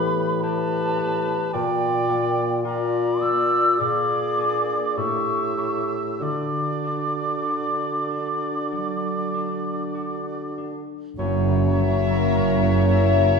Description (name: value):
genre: classical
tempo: 47-54 BPM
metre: 4/4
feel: rubato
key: D major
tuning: A4 = 445 Hz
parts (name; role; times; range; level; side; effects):
- mellow clarinet; second line; 0.0-13.4 s; E4 to Ab4; -29 LUFS; left 2 dB; none
- mellow hollow silver concert flute; second line; 0.0-13.4 s; G5 to E6; -26 LUFS; equal; none
- warm cor anglais; second line; 0.0-13.4 s; B4 to E5; -30 LUFS; right 1 dB; none
- warm bassoon; accompaniment; 0.0-13.4 s; A2 to F#3; -28 LUFS; equal; none
- concert harp; arpeggios; 0.0-13.4 s; F#2 to A#5; -29 LUFS; left 4 dB; none
- warm French horn section; sustained chords; 11.2-13.4 s; A#3 to E4; -28 LUFS; left 3 dB; none
- dark studio cello section; bass; 11.2-13.4 s; F#2; -26 LUFS; right 6 dB; none
- rich studio double bass section; bass; 11.2-13.4 s; F#1; -21 LUFS; right 3 dB; none
- warm studio violin section; melody; 11.8-13.4 s; E5; -28 LUFS; left 7 dB; none
- warm studio violin section; second line; 11.8-13.4 s; A#4; -32 LUFS; left 7 dB; none
- dark studio viola section; accompaniment; 11.8-13.4 s; C#4; -33 LUFS; right 1 dB; none
room: wet recital hall reverb, RT60 1.3 s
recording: heard from further back in the room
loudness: -20 LUFS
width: side -5 dB against mid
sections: 0.0-11.2 A section; 11.2-13.4 B section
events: none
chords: 0.0 A7sus2; 1.5 Bb; 3.8 Bb7; 5.0 A7; 6.2 D; 11.2 F#7